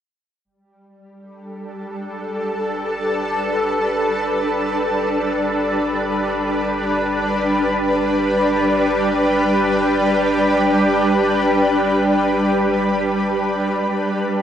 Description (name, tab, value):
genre	ambient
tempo	free time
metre	none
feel	none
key	G major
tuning	A4 = 440 Hz
part	shimmering ambient pad	sustained chords	1.5-14.4 s	G3 to B4	-16 LUFS	equal	chorus, built-in reverb
part	round analog bass	bass	0.4-14.4 s	G1	-41 LUFS	equal	none
room	wet spring reverb, RT60 1.4 s, digital ambience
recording	home recording on cassette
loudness	-16 LUFS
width	side -9 dB against mid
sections	0.5-14.4 A section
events	fade-in on analog synth bass 0.5-14.4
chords	0.5 G